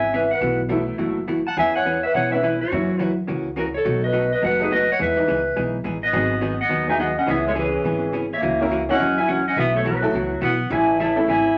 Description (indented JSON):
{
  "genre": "country, western swing",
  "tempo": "210 BPM",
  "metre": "4/4",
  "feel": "swing 62% on 8ths",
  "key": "E major",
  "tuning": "A4 = 440 Hz",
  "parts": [
    { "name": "clean lap steel guitar", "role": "melody", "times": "0.0-11.6 s", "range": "F#4 to A5", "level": "-25 LUFS", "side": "equal", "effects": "none" },
    { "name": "clear clarinet", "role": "second line", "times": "0.0-11.6 s", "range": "E3 to F#5", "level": "-26 LUFS", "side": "equal", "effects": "none" },
    { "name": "honky-tonk upright piano", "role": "accompaniment", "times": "0.0-11.3 s", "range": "E3 to C#5", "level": "-28 LUFS", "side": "equal", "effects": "none" },
    { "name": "vintage hollow-body jazz guitar", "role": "accompaniment", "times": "0.0-11.5 s", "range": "B2 to G#4", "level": "-29 LUFS", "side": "equal", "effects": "none" },
    { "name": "upright bass", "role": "bass", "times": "0.0-11.5 s", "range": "F#1 to F#2", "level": "-31 LUFS", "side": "equal", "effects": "none" }
  ],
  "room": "wet studio reverb, RT60 0.5 s",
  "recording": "none",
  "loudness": "-21 LUFS",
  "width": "mono",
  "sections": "0.0-6.1 A section; 6.1-11.6 B section",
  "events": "none",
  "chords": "0.4 B7sus4; 1.6 E6; 2.7 F#7; 3.9 B7; 5.0 Emaj7; 6.1 G#m7; 7.3 C#m7; 8.4 F#7/C#; 9.6 B7sus4; 10.7 Amaj7"
}